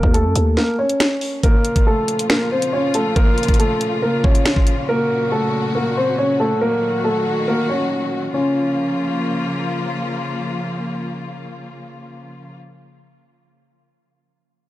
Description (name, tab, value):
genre	hip hop, drill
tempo	139 BPM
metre	4/4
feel	half-time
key	Bb harmonic minor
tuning	A4 = 440 Hz
part	dark concert grand piano	melody	0.0-9.6 s	A3 to Db5	-19 LUFS	equal	digital delay
part	growling 808-style bass	bass	0.0-0.6 s	Eb2 to Gb2	-17 LUFS	equal	none
part	drill drum kit	drums	0.0-4.8 s	finger snaps, hi-hat, kick drum, snare drum	-16 LUFS	equal	none
part	rich studio string section	sustained chords	1.4-12.6 s	Bb2 to Gb4	-24 LUFS	left 2 dB	none
room	little or no reverb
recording	dark, warm production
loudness	-16 LUFS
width	side -15 dB against mid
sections	0.0-1.4 A section; 1.4-8.3 B section; 8.3-11.8 C section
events	break 0.6-1.4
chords	0.0 Eb5; 1.4 Bbm; 4.9 Gb; 6.6 Ebm; 8.3 Bbm